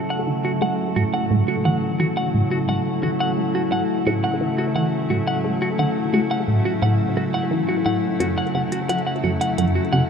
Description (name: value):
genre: ambient, sequencer-driven space music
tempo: 87 BPM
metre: 4/4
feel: straight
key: unclear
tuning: A4 = 436 Hz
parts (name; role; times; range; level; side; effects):
- evolving wavetable pad; sustained chords; 0.0-10.1 s; C#3 to A4; -22 LUFS; left 1 dB; chorus, built-in reverb
- resonant blip pluck; riff; 0.0-10.1 s; F#2 to A3; -23 LUFS; equal; phaser, vintage 12-bit sampler grit, ping-pong delay
- clean electric guitar; arpeggios; 0.1-10.0 s; F#4 to F#5; -25 LUFS; right 1 dB; auto-pan, low-pass filter, ping-pong delay
- electronic hi-hat and bongos; percussion; 8.2-10.1 s; none; -34 LUFS; right 3 dB; none
room: wet cathedral reverb, RT60 5.4 s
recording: in a vast, echoing space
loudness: -19 LUFS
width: side -6 dB against mid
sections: 0.0-10.1 A section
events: filter sweep on synth arpeggio sound 0.0-10.1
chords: 0.0 A6; 8.2 F#m7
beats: 0.62 1.31 2.00 | 2.69 3.38 4.07 4.75 | 5.44 6.13 6.82 7.51 | 8.20 8.89 9.58